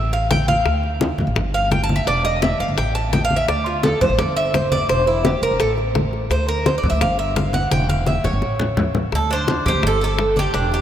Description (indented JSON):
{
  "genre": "latin, Cuban son and guajira",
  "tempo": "170 BPM",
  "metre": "4/4",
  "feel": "straight",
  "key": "D minor",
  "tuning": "A4 = 439 Hz",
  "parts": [
    { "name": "Cuban tres", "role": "arpeggios", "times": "0.0-10.8 s", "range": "D4 to A5", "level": "-20 LUFS", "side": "right 1 dB", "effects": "none" },
    { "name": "upright bass", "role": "bass", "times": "0.0-10.8 s", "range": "E1 to D2", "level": "-22 LUFS", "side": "equal", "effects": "none" },
    { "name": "bongos", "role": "percussion", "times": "0.1-10.8 s", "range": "none", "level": "-28 LUFS", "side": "left 6 dB", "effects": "none" },
    { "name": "congas", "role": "percussion", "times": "0.1-10.8 s", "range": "none", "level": "-24 LUFS", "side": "left 1 dB", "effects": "none" },
    { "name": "Cuban tres", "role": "melody", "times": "9.2-10.8 s", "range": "G4 to C5", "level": "-20 LUFS", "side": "right 2 dB", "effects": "none" }
  ],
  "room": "wet cathedral reverb, RT60 5.2 s",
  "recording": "in a vast, echoing space",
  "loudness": "-16 LUFS",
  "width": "side -10 dB against mid",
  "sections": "0.0-9.1 A section; 9.1-10.8 B section",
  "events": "Cuban tres solo 0.0-9.1; drum fill 7.7-9.1",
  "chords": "0.0 Fmaj9/A; 0.7 D5; 1.4 Fmaj9/G; 2.1 Emmaj7; 2.8 Fmaj9/A; 3.5 D5; 4.2 Cadd9/G; 4.9 Edim; 5.6 N.C.; 6.3 C9/D; 7.0 Emadd9/G; 7.7 Em6; 8.4 A; 9.1 D7sus4; 9.8 Gsus2"
}